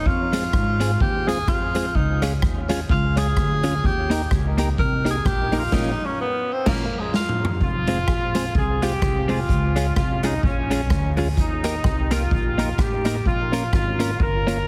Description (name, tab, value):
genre	ska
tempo	127 BPM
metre	4/4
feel	swing 57% on 8ths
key	F minor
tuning	A4 = 440 Hz
part	clear tenor saxophone	melody	0.0-7.6 s	Ab3 to Bb4	-28 LUFS	equal	dub echo
part	upright bass	bass	0.1-14.6 s	F1 to Ab2	-27 LUFS	equal	none
part	street-band drum kit	drums	0.1-14.6 s	crash cymbal, hi-hat, kick drum, rim click, snare drum, toms	-26 LUFS	equal	none
part	clean electric guitar	accompaniment	0.3-14.6 s	Ab3 to Bb4	-31 LUFS	equal	spring reverb
part	mellow tonewheel organ	stabs	0.3-14.6 s	C4 to Bb4	-33 LUFS	equal	slow rotary speaker, dub echo
part	clear horn section	melody	7.6-14.7 s	Db4 to Bb4	-28 LUFS	equal	dub echo
room	light reverb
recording	heavily compressed radio sound, multiband compression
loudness	-22 LUFS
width	mono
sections	0.0-7.6 A section; 7.6-14.7 B section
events	tenor saxophone solo 0.0-7.6; band accent 5.7-7.6; drum fill 7.1-7.6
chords	0.1 Fm; 1.9 Db; 3.8 Eb; 5.7 Bbm; 7.6 Fm; 9.5 Db; 11.4 Eb; 13.3 Bbm